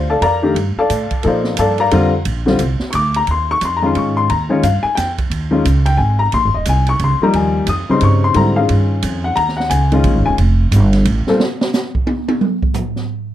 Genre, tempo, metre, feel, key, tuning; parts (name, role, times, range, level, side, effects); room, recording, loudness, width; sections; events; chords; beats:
modal jazz; 177 BPM; 3/4; swing 62% on 8ths; Bb major, Eb mixolydian from 3.3 s; A4 = 439 Hz
clear upright piano; accompaniment; 0.0-11.4 s; Bb2 to Eb6; -15 LUFS; left 3 dB
upright bass; bass; 0.0-11.3 s; Eb1 to Bb2; -16 LUFS; right 1 dB
open jazz drum kit; drums; 0.2-13.0 s; hi-hat, kick drum, ride cymbal, snare drum, toms; -23 LUFS; right 2 dB
light reverb; -13 LUFS; side -12 dB against mid
0.0-3.3 A section; 3.3-11.4 A section; 11.4-13.3 A section
drum solo 11.4-13.3
0.0 Bbmaj9; 3.3 Eb9sus4; 10.4 F; 11.4 N.C.
| 0.22 0.56 0.90 | 1.24 1.57 1.91 | 2.25 2.59 2.93 | 3.27 3.61 3.95 | 4.29 4.63 4.97 | 5.31 5.64 5.98 | 6.32 6.66 7.00 | 7.34 7.68 8.02 | 8.36 8.69 9.03 | 9.37 9.71 10.05 | 10.39 10.72 11.06 | 11.40 11.74 12.08 | 12.42 12.76